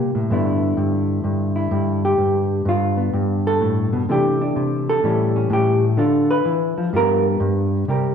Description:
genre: solo jazz.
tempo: 127 BPM.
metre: 4/4.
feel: swing 67% on 8ths.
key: unclear.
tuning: A4 = 442 Hz.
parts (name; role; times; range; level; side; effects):
hollow-body jazz guitar; solo; 0.0-8.1 s; G2 to B4; -17 LUFS; equal; none.
room: wet scoring stage reverb, RT60 1.5 s.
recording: recorded in a church or concert hall.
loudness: -17 LUFS.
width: side -7 dB against mid.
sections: 0.0-7.9 A section.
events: hollow-body jazz guitar solo 0.0-7.9.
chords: 0.3 G69; 4.1 C69; 5.0 A7; 6.0 Dm; 6.9 G7#9.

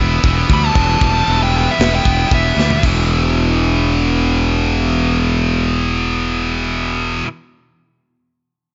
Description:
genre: heavy metal.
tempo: 116 BPM.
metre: 4/4.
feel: straight.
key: E minor.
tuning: A4 = 440 Hz.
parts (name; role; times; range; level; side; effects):
high-gain distorted guitar; riff; 0.0-7.3 s; E2 to E4; -23 LUFS; equal; distortion.
scooped high-gain guitar; riff; 0.0-7.3 s; E2 to E4; -23 LUFS; equal; distortion.
fuzz fingered electric bass; bass; 0.0-7.2 s; E1 to D2; -19 LUFS; equal; overdrive.
tight metal drum kit; drums; 0.2-3.0 s; china cymbal, crash cymbal, kick drum, snare drum, toms; -21 LUFS; equal; none.
nasal lead guitar with a parked wah; melody; 0.5-2.8 s; E5 to B5; -21 LUFS; equal; overdrive, delay.
room: small room ambience.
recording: nothing above 7.6 kHz.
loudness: -16 LUFS.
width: mono.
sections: 0.0-2.8 A section; 2.8-7.0 B section.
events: lead electric guitar solo 0.0-2.8; drum fill 2.6.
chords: 0.0 Em; 2.8 E5.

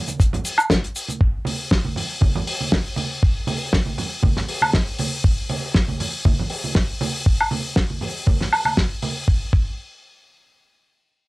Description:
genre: nu-disco.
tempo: 119 BPM.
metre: 4/4.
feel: swing 54% on 16ths.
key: none.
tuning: none.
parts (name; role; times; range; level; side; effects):
damped 70s drum kit; drums; 0.1-9.1 s; hi-hat, shaker, snare drum, woodblock; -22 LUFS; equal; cassette tape.
congas; percussion; 0.1-9.1 s; none; -28 LUFS; right 3 dB; none.
electronic kick drum; drums; 0.2-9.7 s; none; -19 LUFS; equal; cassette tape.
room: moderate booth ambience, RT60 0.3 s.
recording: home recording on cassette.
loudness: -19 LUFS.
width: side -21 dB against mid.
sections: 0.0-1.2 A section; 1.2-9.3 B section; 9.3-11.3 C section.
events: band accent 0.7.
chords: none.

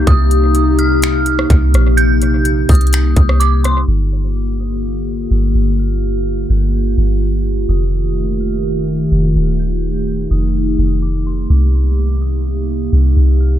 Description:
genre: hip hop, atmospheric cloud-rap.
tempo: 126 BPM.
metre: 4/4.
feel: half-time.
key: G minor.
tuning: A4 = 440 Hz.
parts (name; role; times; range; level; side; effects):
dark detuned synth bell; melody; 0.0-13.6 s; C6 to G6; -20 LUFS; right 2 dB; chorus, phaser, analog delay.
warbly tape-like pad; sustained chords; 0.0-13.6 s; C3 to G4; -18 LUFS; left 1 dB; chorus, built-in reverb, sidechain pumping.
soft 808-style bass; bass; 0.0-13.6 s; Eb1 to C2; -14 LUFS; equal; none.
trap drum kit; drums; 0.1-3.8 s; finger snaps, hi-hat, kick drum, rim click; -16 LUFS; equal; analog delay.
room: digital ambience.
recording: echo-heavy mix, low-pass filter.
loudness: -12 LUFS.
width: side -11 dB against mid.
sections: 0.0-3.9 A section; 3.9-13.6 B section.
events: filter sweep 3.9-13.6.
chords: 0.0 Cm7; 3.9 Gm7; 7.7 F9; 11.5 Cm7.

